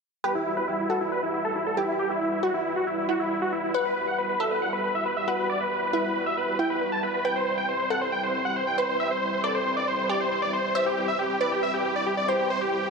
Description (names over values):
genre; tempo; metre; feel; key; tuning
trance; 137 BPM; 4/4; straight; E minor; A4 = 440 Hz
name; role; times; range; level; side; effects
big supersaw lead; melody; 0.2-12.9 s; E4 to A5; -26 LUFS; equal; cassette tape, low-pass filter, tape echo
glassy wavetable pluck; second line; 0.2-12.9 s; E4 to C5; -30 LUFS; equal; chorus, dub echo
filtered supersaw swell; sustained chords; 0.2-12.9 s; G3 to B4; -32 LUFS; equal; none
room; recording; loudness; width
moderate lush hall reverb, RT60 2.3 s; none; -24 LUFS; side -4 dB against mid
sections
0.2-12.9 A section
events
filter sweep on supersaw synth 0.2-12.9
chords
0.2 Emadd9; 7.2 Cmaj7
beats
| 0.24 0.68 1.12 1.55 | 1.99 2.43 2.87 3.31 | 3.74 4.18 4.62 5.06 | 5.50 5.93 6.37 6.81 | 7.25 7.68 8.12 8.56 | 9.00 9.44 9.88 10.31 | 10.75 11.19 11.63 12.06 | 12.50